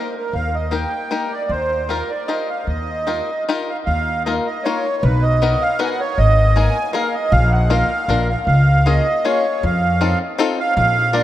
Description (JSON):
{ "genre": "musette waltz", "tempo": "156 BPM", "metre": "3/4", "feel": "swing 53% on 8ths", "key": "Eb major, Eb minor from 3.9 s", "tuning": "A4 = 443 Hz", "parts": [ { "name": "accordion", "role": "melody", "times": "0.0-11.2 s", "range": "Bb4 to Ab5", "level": "-19 LUFS", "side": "right 2 dB", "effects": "light tremolo tuning" }, { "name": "bluegrass banjo", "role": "accompaniment", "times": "0.0-11.2 s", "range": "Bb3 to Bb4", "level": "-23 LUFS", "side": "left 4 dB", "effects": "none" }, { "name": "upright bass", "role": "bass", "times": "0.3-11.2 s", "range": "Ab1 to F2", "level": "-17 LUFS", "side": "equal", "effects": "none" } ], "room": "wet cathedral reverb, RT60 5.8 s", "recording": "in a vast, echoing space", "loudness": "-16 LUFS", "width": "side -13 dB against mid", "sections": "0.0-3.9 A section; 3.9-11.2 B section", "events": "none", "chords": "0.0 Eb; 1.5 Ebadd9; 3.9 Ebsus2; 5.0 Bmaj7; 6.2 Absus2; 7.3 Bbsus4; 8.1 Bb; 8.5 Db6; 9.6 F7" }